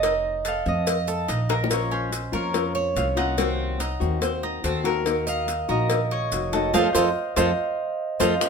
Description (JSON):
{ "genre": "latin, Cuban son and guajira", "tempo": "143 BPM", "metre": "4/4", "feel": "straight", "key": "unclear", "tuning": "A4 = 440 Hz", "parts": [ { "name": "Celtic harp", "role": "melody", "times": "0.0-8.5 s", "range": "A4 to Gb5", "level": "-27 LUFS", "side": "right 3 dB", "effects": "none" }, { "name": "Cuban tres", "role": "arpeggios", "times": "0.0-8.3 s", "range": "C4 to Eb5", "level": "-27 LUFS", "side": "right 3 dB", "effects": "none" }, { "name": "upright bass", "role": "bass", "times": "0.0-8.4 s", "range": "F1 to F2", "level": "-28 LUFS", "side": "equal", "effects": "none" }, { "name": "cowbell and bongos", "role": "percussion", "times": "0.0-8.5 s", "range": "none", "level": "-29 LUFS", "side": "left 6 dB", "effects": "none" }, { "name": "maracas", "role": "percussion", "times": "0.0-8.5 s", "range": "none", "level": "-34 LUFS", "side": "right 4 dB", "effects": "none" }, { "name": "nylon-string guitar", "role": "accompaniment", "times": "1.7-8.5 s", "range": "C3 to Gb4", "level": "-28 LUFS", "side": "left 8 dB", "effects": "none" } ], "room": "moderate studio reverb, RT60 0.8 s", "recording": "minimal, uncompressed stereo recording", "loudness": "-21 LUFS", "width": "side -5 dB against mid", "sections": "0.0-8.4 A section", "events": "drum fill 1.5; band accent 6.7-8.4", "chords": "0.0 F7; 1.7 Bbm; 3.4 Cm7b5; 5.1 Ebm; 6.7 F7" }